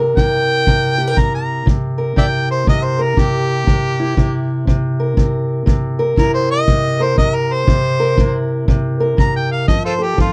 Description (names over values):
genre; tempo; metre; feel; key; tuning
acoustic country blues, solo or duo; 120 BPM; 4/4; swing 62% on 8ths; C mixolydian; A4 = 440 Hz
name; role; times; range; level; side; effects
fingerpicked steel-string acoustic guitar; accompaniment; 0.0-10.3 s; C3 to Bb4; -19 LUFS; equal; none
warm harmonica; melody; 0.2-10.3 s; F4 to Bb5; -21 LUFS; equal; none
kick drum; drums; 0.2-10.3 s; none; -20 LUFS; equal; none
room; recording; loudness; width
little or no reverb; none; -16 LUFS; mono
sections
0.0-1.7 A section; 1.7-10.3 A section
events
harmonica solo 0.0-1.7, 1.7-10.3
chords
0.0 C7; 9.7 F7